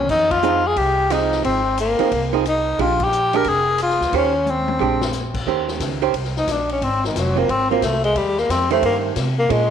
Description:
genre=jazz, small-group swing and bop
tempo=178 BPM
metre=4/4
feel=swing 64% on 8ths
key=Eb mixolydian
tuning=A4 = 440 Hz
part: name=breathy tenor saxophone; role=melody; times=0.0-9.7 s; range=Eb3 to Bb4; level=-19 LUFS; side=left 2 dB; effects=tape echo
part: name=upright bass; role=bass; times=0.0-9.7 s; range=F1 to C3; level=-25 LUFS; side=right 1 dB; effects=none
part: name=swinging big-band drum kit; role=drums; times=0.1-9.6 s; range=crash cymbal, hi-hat, kick drum, ride cymbal, rim click, snare drum, toms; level=-29 LUFS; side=left 6 dB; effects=none
part: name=archtop guitar, miked and amplified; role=accompaniment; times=0.4-9.7 s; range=Eb3 to C5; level=-23 LUFS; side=right 13 dB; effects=none
room=moderate plate reverb, RT60 1.6 s, studio reverb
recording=1960s-style stereo with parts hard left and right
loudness=-17 LUFS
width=side -8 dB against mid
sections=0.0-5.5 A section; 5.5-9.7 B section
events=band accent 0.3, 3.0; drum fill 4.5-5.1; tenor saxophone solo 5.5-9.7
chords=0.1 Fm7; 2.8 Bb6; 4.1 Eb6; 4.8 Bb13; 5.5 Eb6; 6.8 Ab6; 8.2 Eb13

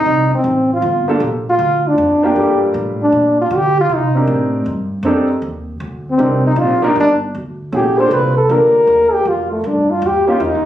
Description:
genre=jazz, small-group swing and bop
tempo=157 BPM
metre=4/4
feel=swing 65% on 8ths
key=G minor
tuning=A4 = 440 Hz
part: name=warm trombone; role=melody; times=0.0-10.7 s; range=A3 to C5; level=-13 LUFS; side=equal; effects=none
part: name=warm baby grand piano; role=accompaniment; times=0.0-10.4 s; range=G3 to D5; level=-17 LUFS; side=right 1 dB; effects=none
part: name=upright bass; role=bass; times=0.0-10.6 s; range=G1 to D3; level=-21 LUFS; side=equal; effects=none
room=light reverb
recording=recorded on a phone in the room, club reverb, compression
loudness=-12 LUFS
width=side -11 dB against mid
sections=0.0-10.7 A section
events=trombone solo 0.0-10.7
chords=0.0 Cm7; 0.8 Gm7; 3.9 Cm7; 7.0 Gm7; 10.0 Eb7

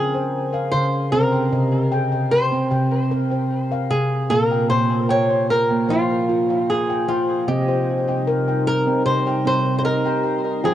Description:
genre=world meditative, meditative tuned percussion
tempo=76 BPM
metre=4/4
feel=straight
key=unclear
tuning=A4 = 440 Hz
part: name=flamenco guitar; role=melody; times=0.0-10.7 s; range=F4 to Db5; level=-21 LUFS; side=equal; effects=cassette tape, shimmer reverb, tape echo
part: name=handpan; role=arpeggios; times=0.0-10.7 s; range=Bb2 to G5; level=-20 LUFS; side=equal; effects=shimmer reverb, tape echo
part: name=warbly tape-like pad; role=sustained chords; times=8.1-10.7 s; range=C3 to Ab4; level=-25 LUFS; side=left 1 dB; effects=chorus, built-in reverb
room=wet booth ambience, RT60 0.2 s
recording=home recording on cassette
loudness=-17 LUFS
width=side -11 dB against mid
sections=0.0-7.5 A section; 7.5-10.7 B section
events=none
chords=0.0 Db; 1.1 Cm; 4.3 Bb5; 5.9 Fmadd9; 7.5 Cm

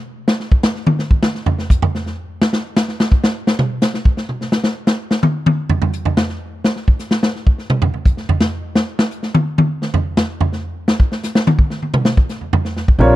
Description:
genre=modal jazz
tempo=170 BPM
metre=3/4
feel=swing 63% on 8ths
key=unclear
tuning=A4 = 440 Hz
part: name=swinging big-band drum kit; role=drums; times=0.3-13.1 s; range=hi-hat, kick drum, ride cymbal, snare drum, toms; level=-15 LUFS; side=equal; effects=none
part: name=clear grand piano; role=accompaniment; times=13.0-13.2 s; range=G3 to Db5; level=-11 LUFS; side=equal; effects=none
part: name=upright bass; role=bass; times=13.0-13.2 s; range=Bb1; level=-11 LUFS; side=equal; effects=none
room=little or no reverb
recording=dry, close 1970s-style studio recording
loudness=-15 LUFS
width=side -15 dB against mid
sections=0.0-4.5 A section; 4.5-13.0 A section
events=drum solo 0.0-13.0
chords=none

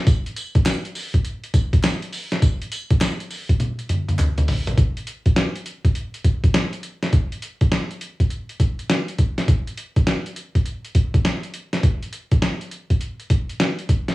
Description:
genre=R&B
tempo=102 BPM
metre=4/4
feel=swing 65% on 16ths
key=none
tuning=none
part: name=boom bap sampler-style drum kit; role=drums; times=0.1-14.1 s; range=hi-hat, kick drum, snare drum, tambourine, toms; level=-18 LUFS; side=equal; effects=cassette tape
part: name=group handclap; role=percussion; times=0.7-4.4 s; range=none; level=-36 LUFS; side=left 1 dB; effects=none
room=moderate studio reverb, RT60 0.6 s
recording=home recording on cassette, small room ambience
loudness=-19 LUFS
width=side -19 dB against mid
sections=0.0-4.8 A section; 4.8-14.1 B section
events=drum fill 3.6-4.8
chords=none

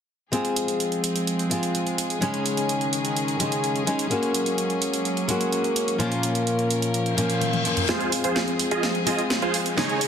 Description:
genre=EDM, festival progressive house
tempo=127 BPM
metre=4/4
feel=straight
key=unclear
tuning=A4 = 439 Hz
part: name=fingerpicked steel-string acoustic guitar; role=accompaniment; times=0.3-10.1 s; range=Bb2 to Ab4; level=-25 LUFS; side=left 2 dB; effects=digital delay
part: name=warm chamber string section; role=sustained chords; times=0.3-10.1 s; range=Eb3 to Bb4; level=-29 LUFS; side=right 1 dB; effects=low-pass filter
part: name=house drum kit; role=drums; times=0.3-10.1 s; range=hi-hat, snare drum, toms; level=-28 LUFS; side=right 2 dB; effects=none
part: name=reverse cymbal and riser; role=sound effects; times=7.1-10.1 s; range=none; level=-32 LUFS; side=left 3 dB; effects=none
part: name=dense compressed supersaw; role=riff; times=7.9-10.0 s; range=Eb4 to Eb5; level=-25 LUFS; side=right 2 dB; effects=low-pass filter, digital delay
room=moderate concert hall reverb, RT60 1.8 s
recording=dense, heavily limited modern master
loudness=-22 LUFS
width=side -8 dB against mid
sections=0.3-7.9 A section; 7.9-10.1 B section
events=reverse cymbal 7.1-7.9; drum fill 7.4-7.9, 7.9-10.1; build-up 7.9-10.1; filter sweep on supersaw synth 7.9-10.1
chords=0.3 Fm; 2.2 Dbsus2; 4.1 Gbadd9; 6.0 Bbm; 7.9 Fm

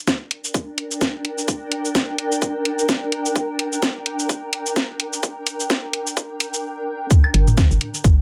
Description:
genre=minimal techno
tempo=128 BPM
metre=4/4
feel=swing 57% on 16ths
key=G minor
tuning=A4 = 440 Hz
part: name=granular cloud pad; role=texture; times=0.7-6.6 s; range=D4 to G5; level=-28 LUFS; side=equal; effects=built-in reverb, sidechain pumping
part: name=electronic kick drum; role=drums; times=0.1-8.2 s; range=none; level=-19 LUFS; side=equal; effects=high-pass filter on kick
part: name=garage drum kit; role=drums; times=0.1-8.2 s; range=cabasa, hi-hat, snare drum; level=-24 LUFS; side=equal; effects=none
part: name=electronic claves and toms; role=percussion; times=7.2-7.7 s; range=none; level=-25 LUFS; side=equal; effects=delay
part: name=hollow knocking FM bass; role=bass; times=7.3-8.2 s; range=G1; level=-20 LUFS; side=equal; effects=sidechain pumping
room=light reverb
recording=high-pass filter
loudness=-21 LUFS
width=mono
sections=0.0-7.1 A section; 7.1-8.2 B section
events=build-up 0.0-7.1; drop 7.1-8.2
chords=0.0 Gm; 7.1 N.C.

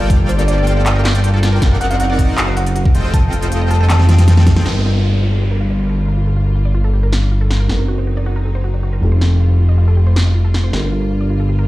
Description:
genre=future bass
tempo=158 BPM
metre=4/4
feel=half-time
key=G minor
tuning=A4 = 439 Hz
part: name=thumb-piano-like synth pluck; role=melody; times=0.0-3.9 s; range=C5 to A5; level=-24 LUFS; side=equal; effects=chorus, sidechain pumping, tape echo
part: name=clear studio string section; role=sustained chords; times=0.0-11.7 s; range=Eb3 to A4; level=-32 LUFS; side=left 1 dB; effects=sidechain pumping
part: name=airy dreamy lead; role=arpeggios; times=0.0-4.6 s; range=F#5 to G5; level=-33 LUFS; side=left 1 dB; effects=none
part: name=wide unison pluck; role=arpeggios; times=0.0-11.6 s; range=F4 to Eb5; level=-30 LUFS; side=equal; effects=sidechain pumping, tape echo
part: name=soft supersaw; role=riff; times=0.0-4.6 s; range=Bb3 to G5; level=-22 LUFS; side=right 1 dB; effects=sidechain pumping, low-pass filter, tape echo
part: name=fat analog bass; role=bass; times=0.0-11.7 s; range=F1 to G1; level=-13 LUFS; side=equal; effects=sidechain pumping
part: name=electronic kick drum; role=drums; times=0.1-4.5 s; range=none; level=-13 LUFS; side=equal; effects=overdrive
part: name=pop drum kit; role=drums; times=0.1-4.7, 7.1-10.8 s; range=handclaps, hi-hat, snare drum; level=-21 LUFS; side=equal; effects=none
part: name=felt-muted upright piano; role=accompaniment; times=4.6-11.7 s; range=F3 to Bb4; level=-26 LUFS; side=right 2 dB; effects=sidechain pumping, tape echo
part: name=downlifter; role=sound effects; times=4.7-7.7 s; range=none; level=-27 LUFS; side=equal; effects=none
room=digital ambience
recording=played on a big sound system in a bare room, large studio reverb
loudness=-12 LUFS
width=side -17 dB against mid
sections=0.0-4.7 A section; 4.7-11.7 B section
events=drop 0.0-4.7; drum fill 3.9-4.7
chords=0.0 Gm9; 1.6 D7b9b13/F#; 2.9 F9; 4.7 Gm9; 7.7 D7b9b13/F# (rootless); 9.0 F9; 10.7 Gm9

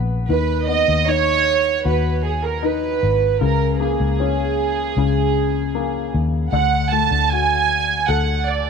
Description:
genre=pop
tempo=77 BPM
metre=4/4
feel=straight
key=B major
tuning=A4 = 439 Hz
part: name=warm baby grand piano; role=accompaniment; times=0.0-8.7 s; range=C#3 to A4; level=-24 LUFS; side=left 16 dB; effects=none
part: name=vintage muted fingered electric bass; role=bass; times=0.0-8.7 s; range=G#1 to D#2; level=-21 LUFS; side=left 2 dB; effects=none
part: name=warm studio violin section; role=melody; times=0.3-8.7 s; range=G#4 to A5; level=-19 LUFS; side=right 9 dB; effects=none
room=light reverb, studio reverb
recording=1960s-style stereo with parts hard left and right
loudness=-16 LUFS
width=side -6 dB against mid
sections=0.0-8.7 A section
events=none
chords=0.3 B/D#; 3.4 A#m7/C#; 6.5 D

